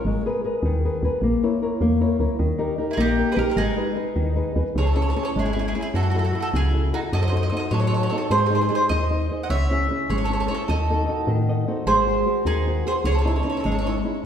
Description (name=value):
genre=italian folk, Italian serenade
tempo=102 BPM (dotted quarters)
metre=6/8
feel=rubato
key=G# harmonic minor, C# harmonic minor from 4.8 s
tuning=A4 = 440 Hz
part: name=woody FM bass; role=bass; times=0.0-14.0 s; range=G#1 to A2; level=-24 LUFS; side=equal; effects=none
part: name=flamenco guitar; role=accompaniment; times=0.1-14.2 s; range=C#3 to D#5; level=-25 LUFS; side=left 2 dB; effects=none
part: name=bowl-back mandolin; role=melody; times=2.9-13.9 s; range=F#4 to F#5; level=-26 LUFS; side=right 1 dB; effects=none
part: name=mandolin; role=second line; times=2.9-14.0 s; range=D#4 to D#5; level=-28 LUFS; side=right 4 dB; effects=none
room=wet scoring stage reverb, RT60 1.8 s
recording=heard from further back in the room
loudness=-20 LUFS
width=side -8 dB against mid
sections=0.0-4.8 A section; 4.8-14.2 B section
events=nylon-string guitar fill 11.3-11.9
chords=0.0 G#madd9; 1.2 A#dim; 2.4 D#; 3.6 G#m; 4.8 C#m; 5.9 F#m7; 7.1 D#dim/F#; 8.3 G#; 9.5 C#m; 10.7 D#dim; 11.9 G#7; 13.0 C#madd9